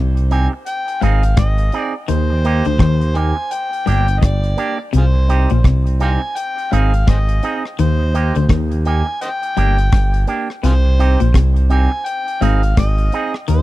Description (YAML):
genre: roots reggae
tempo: 84 BPM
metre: 4/4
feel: swing 60% on 16ths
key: C minor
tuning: A4 = 440 Hz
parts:
  - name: electric guitar at the edge of break-up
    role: riff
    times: 0.0-13.6 s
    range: G2 to Eb3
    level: -21 LUFS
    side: left 6 dB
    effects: none
  - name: smooth synth bass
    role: bass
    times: 0.0-13.6 s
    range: G1 to Eb2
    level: -14 LUFS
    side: equal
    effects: none
  - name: deep reggae drum kit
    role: drums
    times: 0.2-13.6 s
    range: hi-hat, kick drum, rim click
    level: -16 LUFS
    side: equal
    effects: none
  - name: overdriven harmonica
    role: melody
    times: 0.3-13.6 s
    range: F4 to Ab5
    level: -23 LUFS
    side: equal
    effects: dub echo
  - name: electric guitar with an envelope filter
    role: accompaniment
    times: 0.3-13.3 s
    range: Bb3 to Ab4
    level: -24 LUFS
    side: right 5 dB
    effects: dub echo
room: studio reverb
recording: dry, close 1970s-style studio recording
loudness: -14 LUFS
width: side -17 dB against mid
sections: 0.0-13.6 A section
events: none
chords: 0.0 Cm; 0.7 Ab; 2.1 Eb; 3.5 Gm; 4.9 Cm; 6.4 Ab; 7.8 Eb; 9.2 Gm; 10.6 Cm; 12.1 Ab